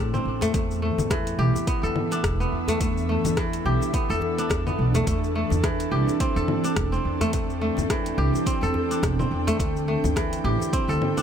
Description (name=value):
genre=organic downtempo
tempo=106 BPM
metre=4/4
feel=swing 57% on 16ths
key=unclear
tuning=A4 = 444 Hz
part: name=ethereal airy pad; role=sustained chords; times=0.0-11.2 s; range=A2 to G5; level=-29 LUFS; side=right 1 dB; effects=ensemble chorus, built-in reverb, sidechain pumping
part: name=kora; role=arpeggios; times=0.0-11.2 s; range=E3 to A4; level=-26 LUFS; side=equal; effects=ping-pong delay
part: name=upright bass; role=bass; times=0.0-11.0 s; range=E1 to A2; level=-26 LUFS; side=equal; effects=tube saturation, sidechain pumping
part: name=deep house drum kit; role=drums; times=0.1-11.2 s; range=congas, hi-hat, rim click, shaker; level=-30 LUFS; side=left 3 dB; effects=overdrive, small room ambience
part: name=djembe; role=percussion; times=0.4-11.2 s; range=none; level=-34 LUFS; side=left 2 dB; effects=none
part: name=electronic kick drum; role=drums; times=0.5-10.9 s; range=none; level=-28 LUFS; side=equal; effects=overdrive, small room ambience
room=light reverb, small room ambience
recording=none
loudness=-22 LUFS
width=side -8 dB against mid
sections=0.0-11.2 A section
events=none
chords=0.0 Am7; 0.5 E7sus4; 9.6 D9sus4